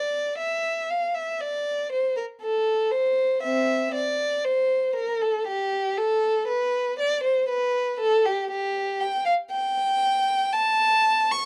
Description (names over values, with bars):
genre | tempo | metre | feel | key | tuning
classical, baroque-style suite movement for unaccompanied violin | 59 BPM | 3/4 | rubato | unclear | A4 = 440 Hz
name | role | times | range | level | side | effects
warm violin | solo | 0.0-11.5 s | C4 to C#6 | -24 LUFS | equal | none
room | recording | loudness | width
light reverb | dark, warm production | -24 LUFS | mono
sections
0.0-11.5 A section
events
none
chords
none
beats
| 0.39 1.40 2.42 | 3.43 4.46 5.48 | 6.48 7.49 8.51 | 9.52 10.54